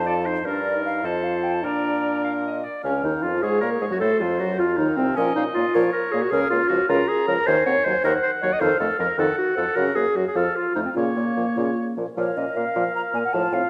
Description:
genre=quick classical-period movement for wind quintet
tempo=103 BPM (dotted quarters)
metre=6/8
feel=straight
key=Bb minor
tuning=A4 = 440 Hz
part: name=hollow concert flute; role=melody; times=0.0-13.7 s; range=C4 to Bb5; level=-30 LUFS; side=equal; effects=none
part: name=clear oboe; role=second line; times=0.0-13.7 s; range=A4 to Bb5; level=-31 LUFS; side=equal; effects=none
part: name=clear French horn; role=accompaniment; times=0.0-13.6 s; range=C3 to F4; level=-30 LUFS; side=equal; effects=none
part: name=warm bassoon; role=bass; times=0.0-13.6 s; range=C2 to Bb2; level=-31 LUFS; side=equal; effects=none
part: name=bright clarinet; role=accompaniment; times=0.1-13.7 s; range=Bb3 to F5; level=-26 LUFS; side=equal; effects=none
room=wet recital hall reverb, RT60 1.6 s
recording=none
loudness=-22 LUFS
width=mono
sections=0.0-2.8 A section; 2.8-12.2 B section; 12.2-13.7 B section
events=none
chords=0.4 Gm; 1.0 F; 1.6 Bb; 2.8 Bbm/Db; 4.0 F7; 5.2 Bbm; 6.3 Bbm/Db; 7.5 Cdim/Eb; 8.6 F7b9; 9.8 Gb; 10.4 F; 11.0 Bbm; 12.2 Bb5

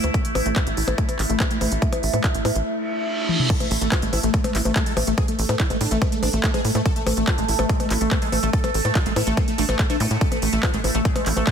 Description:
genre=psychedelic trance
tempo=143 BPM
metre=4/4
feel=straight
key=A major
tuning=A4 = 442 Hz
part: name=overtone-sweeping drone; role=sustained chords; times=0.0-11.5 s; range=A3 to C#5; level=-28 LUFS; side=right 3 dB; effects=chorus, built-in reverb, sidechain pumping
part: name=liquid acid bass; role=riff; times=0.0-11.5 s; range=G#3 to E4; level=-29 LUFS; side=moving between left 8 dB and right 6 dB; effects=chorus, auto-pan, sidechain pumping, digital delay
part: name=tight sequencer bass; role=bass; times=0.0-11.4 s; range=A1 to A2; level=-24 LUFS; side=equal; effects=none
part: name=techno drum kit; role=drums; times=0.0-11.5 s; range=crash cymbal, handclaps, hi-hat, percussion blips, toms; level=-26 LUFS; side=left 2 dB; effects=studio reverb
part: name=electronic kick drum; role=drums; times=0.1-11.5 s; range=none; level=-22 LUFS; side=equal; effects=overdrive, studio reverb
part: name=reverse cymbal and zap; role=sound effects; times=2.8-3.5, 10.0-10.1 s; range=none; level=-28 LUFS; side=right 1 dB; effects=none
part: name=dense compressed supersaw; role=melody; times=3.5-11.5 s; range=A3 to A4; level=-28 LUFS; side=right 1 dB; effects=phaser, sidechain pumping, ping-pong delay
part: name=vowel-sweep wobble bass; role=second line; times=10.9-11.5 s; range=none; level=barely audible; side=none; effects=none
room=light reverb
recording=dense, heavily limited modern master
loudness=-19 LUFS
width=side -7 dB against mid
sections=0.0-3.5 A section; 3.5-11.5 B section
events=filter sweep on acid bass 0.0-3.5; reverse cymbal 2.8-3.5; drum fill 3.3; drop 3.5-11.5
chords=0.0 A5; 3.5 Amaj7

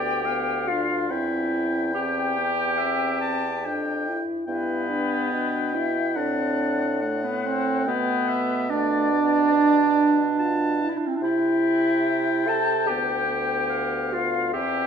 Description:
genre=classical, slow romantic movement for wind quintet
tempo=71 BPM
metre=4/4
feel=rubato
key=C major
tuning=A4 = 444 Hz
part: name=silver concert flute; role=melody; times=0.0-14.9 s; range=B4 to A5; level=-30 LUFS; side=left 10 dB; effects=none
part: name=clear oboe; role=second line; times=0.0-14.9 s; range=D5 to A5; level=-30 LUFS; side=left 4 dB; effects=none
part: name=mellow French horn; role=accompaniment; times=0.0-14.9 s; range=A3 to F4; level=-30 LUFS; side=left 2 dB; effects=none
part: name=mellow clarinet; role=accompaniment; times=0.0-14.9 s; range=B3 to A4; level=-24 LUFS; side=right 4 dB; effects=none
part: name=warm bassoon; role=bass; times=0.0-14.9 s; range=D2 to C3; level=-31 LUFS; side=right 1 dB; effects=none
room=wet recital hall reverb, RT60 1.4 s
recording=minimal, uncompressed stereo recording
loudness=-21 LUFS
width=side -7 dB against mid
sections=0.0-14.9 A section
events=none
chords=0.0 Bdim/D; 1.1 C/E; 4.5 G; 6.2 F#dim/A; 7.9 G/B (rootless); 11.2 C; 12.9 G7/D

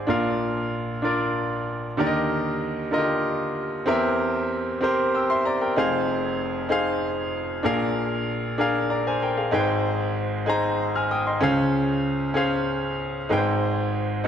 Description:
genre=gospel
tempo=64 BPM (dotted quarters)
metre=6/8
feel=straight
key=Eb major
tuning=A4 = 440 Hz
part: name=bright grand piano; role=solo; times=0.0-14.3 s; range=F1 to F6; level=-22 LUFS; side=equal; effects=none
room=moderate concert hall reverb, RT60 2.1 s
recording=none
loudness=-22 LUFS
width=side -8 dB against mid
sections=0.0-2.0 A section; 2.0-14.3 B section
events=none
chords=0.1 Bb; 2.0 Ebmaj7; 3.9 C7/E; 5.8 Fm7; 7.6 Bb7; 9.5 Abmaj7; 11.4 Dbmaj7; 13.3 Abmaj7

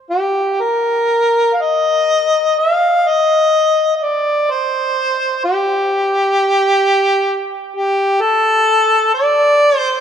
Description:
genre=celtic folk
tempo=64 BPM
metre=4/4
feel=rubato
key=unclear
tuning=A4 = 440 Hz
part: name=mellow harmonica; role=solo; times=0.1-10.0 s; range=G4 to F5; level=-12 LUFS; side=left 1 dB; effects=none
room=moderate church reverb, RT60 3.2 s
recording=dark, warm production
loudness=-12 LUFS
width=side -8 dB against mid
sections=0.6-10.0 A section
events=none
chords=none

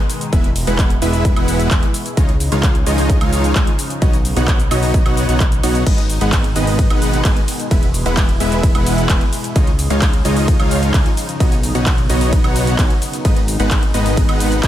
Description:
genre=EDM, festival progressive house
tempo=130 BPM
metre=4/4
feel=straight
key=G# minor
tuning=A4 = 440 Hz
part: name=lush unison pad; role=sustained chords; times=0.0-14.7 s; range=B2 to E4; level=-25 LUFS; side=equal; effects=chorus, phaser, sidechain pumping
part: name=big-room dance drum kit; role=drums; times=0.1-14.7 s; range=crash cymbal, handclaps, hi-hat, ride cymbal, shaker, woodblock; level=-24 LUFS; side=equal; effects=overdrive, studio ambience
part: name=dense compressed supersaw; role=riff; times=0.3-14.7 s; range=G#3 to G#5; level=-20 LUFS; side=equal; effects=sidechain pumping, digital delay
part: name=fat analog bass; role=bass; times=0.3-14.7 s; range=E1 to C#2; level=-19 LUFS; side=equal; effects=sidechain pumping
part: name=electronic kick drum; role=drums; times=0.3-14.7 s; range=none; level=-15 LUFS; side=equal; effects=overdrive, studio ambience
room=digital ambience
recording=none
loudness=-13 LUFS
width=side -12 dB against mid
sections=0.0-14.7 A section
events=none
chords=0.3 E; 2.2 C#add9; 4.0 Badd9; 5.9 G#m; 7.7 E; 9.6 C#add9; 11.4 Badd9; 13.2 G#m

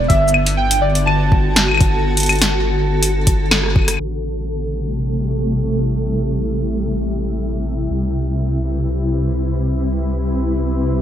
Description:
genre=IDM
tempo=123 BPM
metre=4/4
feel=straight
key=A dorian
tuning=A4 = 442 Hz
part: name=warbly lo-fi synth keys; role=melody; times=0.0-3.5 s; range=D5 to A5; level=-20 LUFS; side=right 2 dB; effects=chorus, phaser, ping-pong delay
part: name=granular cloud pad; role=sustained chords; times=0.0-11.0 s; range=C3 to B4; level=-20 LUFS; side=equal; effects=built-in reverb
part: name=round analog bass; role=bass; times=0.0-11.0 s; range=G1 to C2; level=-20 LUFS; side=equal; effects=none
part: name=electro analog drum machine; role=drums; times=0.1-4.1 s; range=claves, crash cymbal, hi-hat, rim click, shaker, snare drum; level=-17 LUFS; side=left 1 dB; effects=low-pass filter on perc, low-pass filter on snare, low-pass filter on hats, low-pass filter on cymbals
part: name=electronic kick drum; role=drums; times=0.1-3.9 s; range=none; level=-15 LUFS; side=equal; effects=overdrive
room=light reverb, digital ambience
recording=bright 1980s-style digital production, low-pass filter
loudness=-15 LUFS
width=side -10 dB against mid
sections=0.0-4.0 A section; 4.0-11.0 B section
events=drum fill 3.5-4.0; filter sweep 4.0-11.0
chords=0.1 Gmaj9; 4.0 Am7; 7.9 Cmaj7

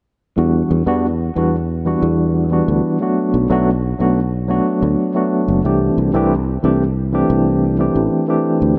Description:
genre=sunset chillout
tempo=91 BPM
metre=4/4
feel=straight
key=E minor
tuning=A4 = 440 Hz
part: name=bright tine electric piano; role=accompaniment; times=0.4-8.8 s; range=E3 to G4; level=-18 LUFS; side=equal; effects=fast tremolo, tape echo
part: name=sustaining fretless electric bass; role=bass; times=0.4-8.7 s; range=F#1 to E2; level=-20 LUFS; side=equal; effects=none
room=light reverb, digital ambience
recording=nothing above 10.5 kHz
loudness=-17 LUFS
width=mono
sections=0.4-8.8 A section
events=none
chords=0.4 Em9; 3.0 Bm7; 5.7 C69; 8.3 D7sus4

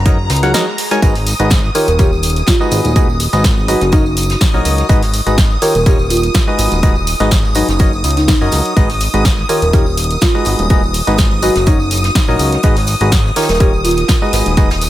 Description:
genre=piano house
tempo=124 BPM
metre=4/4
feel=swing 54% on 16ths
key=G# dorian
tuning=A4 = 440 Hz
part: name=string machine, violins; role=sustained chords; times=0.0-14.9 s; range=A#5 to D#6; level=-22 LUFS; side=equal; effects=ensemble chorus, sidechain pumping
part: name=fat analog bass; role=bass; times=0.0-14.9 s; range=D#1 to F#2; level=-16 LUFS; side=equal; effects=sidechain pumping
part: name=percussive organ stab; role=riff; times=0.1-14.7 s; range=D#3 to G#5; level=-18 LUFS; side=equal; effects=chorus, sidechain pumping, dub echo
part: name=electronic kick drum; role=drums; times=0.1-14.7 s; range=none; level=-13 LUFS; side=equal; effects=none
part: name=jazz brush drum kit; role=drums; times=0.1-14.8 s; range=hi-hat, snare drum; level=-28 LUFS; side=right 2 dB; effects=none
part: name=punchy analog drum machine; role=drums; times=0.1-14.9 s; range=hi-hat, snare drum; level=-20 LUFS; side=equal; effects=none
part: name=swell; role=sound effects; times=0.2-1.0 s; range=none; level=-26 LUFS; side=equal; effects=none
part: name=tambourine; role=percussion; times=1.0-14.9 s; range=none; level=-28 LUFS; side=right 2 dB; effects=dub echo
part: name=folk marimba with medium mallets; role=melody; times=1.7-14.3 s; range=D#4 to A#4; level=-19 LUFS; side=right 1 dB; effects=dub echo
room=light reverb, studio reverb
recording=echo-heavy mix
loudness=-10 LUFS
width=side -14 dB against mid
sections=0.0-14.9 A section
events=swell 0.2-1.0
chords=0.1 F#6; 1.0 G#m7; 1.7 D#9; 2.7 G#m7; 3.9 F#6; 4.9 G#m7; 5.6 D#9; 6.6 G#m7; 7.8 F#6; 8.8 G#m7; 9.5 D#9; 10.5 G#m7; 11.7 F#6; 12.6 G#m7; 13.4 D#9; 14.3 G#m7

